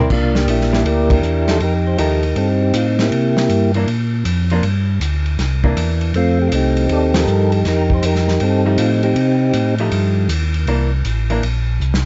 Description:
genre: soul jazz organ trio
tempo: 159 BPM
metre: 4/4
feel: swing 66% on 8ths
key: unclear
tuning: A4 = 440 Hz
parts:
  - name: archtop guitar, miked and amplified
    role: accompaniment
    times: 0.0-11.4 s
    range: E3 to G4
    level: -24 LUFS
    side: equal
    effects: none
  - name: mellow tonewheel organ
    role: bass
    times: 0.0-12.1 s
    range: A1 to C3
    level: -19 LUFS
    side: equal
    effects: chorus vibrato, slow rotary speaker
  - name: percussive tonewheel organ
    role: melody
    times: 0.1-3.7, 6.2-9.8 s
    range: A3 to D5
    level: -19 LUFS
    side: equal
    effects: slow rotary speaker
  - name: warm soul drum kit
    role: drums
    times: 0.1-12.1 s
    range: crash cymbal, hi-hat, kick drum, ride cymbal, snare drum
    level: -25 LUFS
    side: equal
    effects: none
room: light reverb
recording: dark, warm production, nothing above 7.8 kHz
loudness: -16 LUFS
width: mono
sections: 0.1-12.1 A section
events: band accent 1.0, 7.1; drum fill 11.8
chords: 0.1 C9; 1.6 F9; 3.1 C9; 4.6 G5; 5.4 C9; 6.1 F9; 10.7 C9

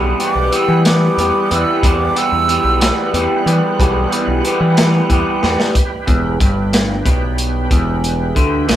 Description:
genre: psychedelic rock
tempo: 61 BPM (dotted quarters)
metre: 6/8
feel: straight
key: E minor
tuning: A4 = 440 Hz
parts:
  - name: overdriven tonewheel organ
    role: sustained chords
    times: 0.0-8.8 s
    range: E3 to F#5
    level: -25 LUFS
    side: right 4 dB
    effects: slow rotary speaker, chorus vibrato
  - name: electric guitar through a small old amp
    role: riff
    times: 0.0-8.8 s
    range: E2 to G4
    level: -17 LUFS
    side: equal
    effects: phaser
  - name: growling picked electric bass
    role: bass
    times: 0.0-8.8 s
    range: E1 to E3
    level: -18 LUFS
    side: equal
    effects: overdrive
  - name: breathy mellow silver concert flute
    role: melody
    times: 0.2-3.4 s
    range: D6 to E6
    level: -18 LUFS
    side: right 4 dB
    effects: none
  - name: crunchy breakbeat drum kit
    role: drums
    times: 0.2-8.8 s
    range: hi-hat, kick drum, snare drum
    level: -17 LUFS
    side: equal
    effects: none
room: moderate small room reverb, RT60 0.5 s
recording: band playing live in one room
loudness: -12 LUFS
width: side -12 dB against mid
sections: 0.0-5.7 A section; 5.7-8.8 B section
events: flute solo 0.0-5.7; drum fill 5.4-5.7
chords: 0.0 Em

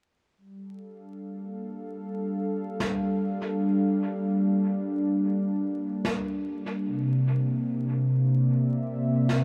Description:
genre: ambient dub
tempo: 74 BPM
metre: 4/4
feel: swing 53% on 16ths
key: G dorian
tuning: A4 = 440 Hz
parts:
  - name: warm analog pad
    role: sustained chords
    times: 0.4-9.4 s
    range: C3 to F5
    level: -28 LUFS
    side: equal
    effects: chorus
  - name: snare drum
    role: drums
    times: 2.8-9.4 s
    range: none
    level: -36 LUFS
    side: equal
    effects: dub echo
room: light reverb, small room ambience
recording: dark, warm production, vinyl crackle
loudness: -27 LUFS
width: mono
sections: 0.4-9.4 A section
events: filter sweep on analog synth pad 0.4-9.4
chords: 0.4 Gm9; 6.9 C7

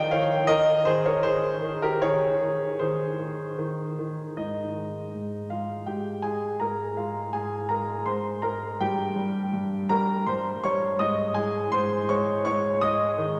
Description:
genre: classical-period piano sonatina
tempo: 75-83 BPM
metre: 3/4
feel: rubato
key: Ab major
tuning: A4 = 437 Hz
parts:
  - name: warm grand piano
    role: solo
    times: 0.0-13.4 s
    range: G2 to Eb6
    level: -26 LUFS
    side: equal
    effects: none
room: wet church reverb, RT60 3.1 s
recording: none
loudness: -26 LUFS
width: mono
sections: 0.0-4.4 A section; 4.4-13.4 B section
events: none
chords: 0.0 Eb; 2.0 Ab/Eb; 4.4 Ab5; 6.6 Bb5/Ab; 8.8 Gdim; 11.0 Ab

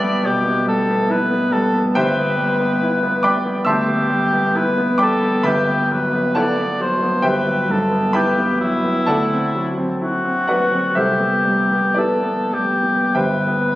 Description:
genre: classical, impressionist duo for cor anglais and grand piano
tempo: 48-71 BPM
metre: 4/4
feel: rubato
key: G major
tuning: A4 = 440 Hz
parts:
  - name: mellow cor anglais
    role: melody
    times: 0.0-13.8 s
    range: E4 to D5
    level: -19 LUFS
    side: left 1 dB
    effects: none
  - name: clear grand piano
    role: accompaniment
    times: 0.0-13.8 s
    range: G1 to E6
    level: -18 LUFS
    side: equal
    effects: none
room: moderate scoring stage reverb, RT60 1.6 s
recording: recorded on a phone in the room, club reverb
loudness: -16 LUFS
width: side -16 dB against mid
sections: 0.0-13.8 A section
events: none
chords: 0.0 Em7/B; 1.9 G6; 5.4 Emadd9/G; 9.1 D9; 11.0 Cmaj7; 13.2 G

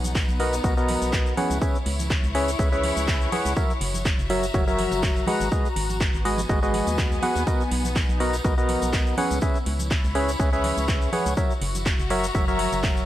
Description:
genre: piano house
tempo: 123 BPM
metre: 4/4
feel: swing 54% on 16ths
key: B major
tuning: A4 = 440 Hz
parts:
  - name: organ-like FM bass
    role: bass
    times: 0.0-13.0 s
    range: F#1 to D#2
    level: -28 LUFS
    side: equal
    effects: sidechain pumping
  - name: house drum kit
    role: drums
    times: 0.0-13.1 s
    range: cabasa, handclaps, hi-hat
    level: -31 LUFS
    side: equal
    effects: none
  - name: tambourine and congas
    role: percussion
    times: 0.0-13.1 s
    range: none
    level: -36 LUFS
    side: right 3 dB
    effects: none
  - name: rich symphonic string section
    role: texture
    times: 0.0-13.1 s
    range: B3 to B5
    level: -32 LUFS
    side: left 4 dB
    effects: sidechain pumping
  - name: electronic kick drum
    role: drums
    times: 0.2-12.9 s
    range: none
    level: -24 LUFS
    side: equal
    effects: none
  - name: percussive organ stab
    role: riff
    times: 0.4-13.1 s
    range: F#3 to F#5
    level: -26 LUFS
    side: equal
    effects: chorus, sidechain pumping, analog delay
room: light reverb, digital ambience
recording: dry, gritty hardware recording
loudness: -21 LUFS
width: side -13 dB against mid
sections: 0.0-13.1 A section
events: none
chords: 0.0 Bmaj7; 1.4 C#m7; 3.6 F#7; 5.3 G#m7; 7.5 Bmaj7; 9.2 C#m7; 11.4 F#7

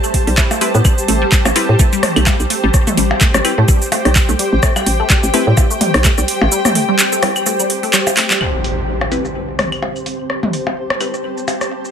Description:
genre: minimal techno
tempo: 127 BPM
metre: 4/4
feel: swing 57% on 16ths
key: A minor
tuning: A4 = 440 Hz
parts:
  - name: resonant blip pluck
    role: riff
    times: 0.0-8.4 s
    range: G3 to E4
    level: -21 LUFS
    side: equal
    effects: chorus, phaser, sidechain pumping, digital delay
  - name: garage drum kit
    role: drums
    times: 0.0-11.9 s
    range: cabasa, handclaps, hi-hat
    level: -17 LUFS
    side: right 1 dB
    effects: overdrive, low-pass filter on hats, small room ambience, low-pass filter on perc, low-pass filter on snare
  - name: granular cloud pad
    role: texture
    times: 0.0-11.9 s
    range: G4 to A5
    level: -20 LUFS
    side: equal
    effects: built-in reverb, sidechain pumping
  - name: electronic kick drum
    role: drums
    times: 0.1-6.2 s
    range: none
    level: -14 LUFS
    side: equal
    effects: overdrive, small room ambience
  - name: hollow knocking FM bass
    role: bass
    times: 0.3-6.5 s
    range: A1 to A2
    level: -15 LUFS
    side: equal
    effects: sidechain pumping
  - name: minimal click drum kit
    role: percussion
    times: 0.4-11.7 s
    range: claves, percussion blips, rim click, toms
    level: -19 LUFS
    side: left 2 dB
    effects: small room ambience, digital delay
  - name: wavetable chord stab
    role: stabs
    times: 0.6-11.1 s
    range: C4 to B4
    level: -21 LUFS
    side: left 3 dB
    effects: digital delay
  - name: impact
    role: sound effects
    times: 8.4-10.3 s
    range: none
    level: -24 LUFS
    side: equal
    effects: none
  - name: flickering grainy texture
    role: texture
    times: 9.0-11.9 s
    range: C4 to C5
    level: -27 LUFS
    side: right 1 dB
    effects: built-in reverb, sidechain pumping
room: light reverb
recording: none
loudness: -12 LUFS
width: side -8 dB against mid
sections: 0.0-8.4 A section; 8.4-11.9 B section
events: drop 0.0-8.4; kick drops out 6.5-8.4; drum fill 8.2; impact 8.4-10.3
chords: 0.0 Am7

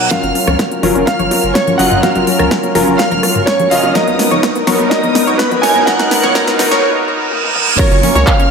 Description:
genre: progressive house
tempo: 125 BPM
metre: 4/4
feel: straight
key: F# major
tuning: A4 = 440 Hz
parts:
  - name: warm baby grand piano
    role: melody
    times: 0.0-8.5 s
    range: B4 to G#5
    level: -17 LUFS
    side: right 2 dB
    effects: ping-pong delay
  - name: warm analog pad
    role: sustained chords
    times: 0.0-8.5 s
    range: F#3 to A#4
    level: -18 LUFS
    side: equal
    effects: chorus, tremolo, sidechain pumping
  - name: supersaw stab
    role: stabs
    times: 0.0-8.5 s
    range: F#3 to D#5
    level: -18 LUFS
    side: left 2 dB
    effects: sidechain pumping, low-pass filter, ping-pong delay
  - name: reverse cymbal and riser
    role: sound effects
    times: 0.0-7.8 s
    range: none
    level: -22 LUFS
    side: right 4 dB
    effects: none
  - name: rich studio violin section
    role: second line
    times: 0.1-8.5 s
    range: B5 to G#6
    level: -22 LUFS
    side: equal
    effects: sidechain pumping, ping-pong delay
  - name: analog pluck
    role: arpeggios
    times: 0.1-8.5 s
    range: F#3 to C#5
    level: -19 LUFS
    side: equal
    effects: wide subtle chorus, sidechain pumping, ping-pong delay
  - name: big-room dance drum kit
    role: drums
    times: 0.1-8.5 s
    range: crash cymbal, handclaps, hi-hat, rim click, snare drum, toms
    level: -19 LUFS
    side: equal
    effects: overdrive, studio reverb, sidechain pumping on hats, sidechain pumping on toms, sidechain pumping on cymbals
  - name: electronic kick drum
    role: drums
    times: 0.1-8.4 s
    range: none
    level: -17 LUFS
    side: equal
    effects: overdrive, high-pass filter on kick, studio reverb
  - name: electronic bongos, congas and toms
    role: percussion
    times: 0.1-8.5 s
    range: none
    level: -22 LUFS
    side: left 4 dB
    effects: sidechain pumping on perc, studio reverb, sidechain pumping on toms
  - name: saturated sub bass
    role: bass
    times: 0.2-8.2 s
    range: F#1 to C#2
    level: -22 LUFS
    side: equal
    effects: sidechain pumping
room: wet plate reverb, RT60 1.6 s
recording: dreamy mix soaked in reverb, high-pass filter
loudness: -10 LUFS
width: side -5 dB against mid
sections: 0.1-7.8 A section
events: build-up 0.1-7.8; drum fill 0.1-6.8, 7.3-7.8; filter sweep on synth pluck 0.1-7.8; filter sweep on supersaw synth 0.1-7.8; filter sweep 0.1-7.8; break 6.8-7.8; reverse cymbal 6.8-7.8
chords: 0.1 F#maj7; 4.0 Bmaj7; 7.8 F#maj7

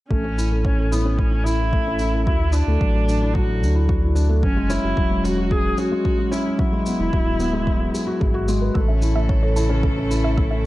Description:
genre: piano and strings electronica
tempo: 111 BPM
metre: 4/4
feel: straight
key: A major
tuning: A4 = 439 Hz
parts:
  - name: dark viola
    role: melody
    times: 0.1-8.4 s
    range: B3 to G#4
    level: -26 LUFS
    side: equal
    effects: none
  - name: felt-muted upright piano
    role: riff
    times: 0.1-10.7 s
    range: F#3 to C#5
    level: -24 LUFS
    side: left 1 dB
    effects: tape echo
  - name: round analog bass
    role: bass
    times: 0.1-10.7 s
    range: D1 to D2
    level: -22 LUFS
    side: equal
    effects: sidechain pumping
  - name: electronic kick drum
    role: drums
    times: 0.1-10.5 s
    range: none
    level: -22 LUFS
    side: equal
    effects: overdrive
  - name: shaker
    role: drums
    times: 0.4-10.2 s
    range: none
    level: -37 LUFS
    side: equal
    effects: none
  - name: soft round pluck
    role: arpeggios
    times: 8.7-10.6 s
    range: A4 to E6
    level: -31 LUFS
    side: right 3 dB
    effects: chorus, sidechain pumping, tape echo
  - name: clear string quartet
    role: sustained chords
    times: 8.8-10.7 s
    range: C#3 to A4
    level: -30 LUFS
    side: equal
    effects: none
room: light reverb, small room ambience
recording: dark, warm production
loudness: -18 LUFS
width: side -17 dB against mid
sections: 0.1-10.7 A section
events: none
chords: 0.1 A; 2.3 Dadd9; 4.4 F#sus2; 6.6 Eadd9; 8.8 A

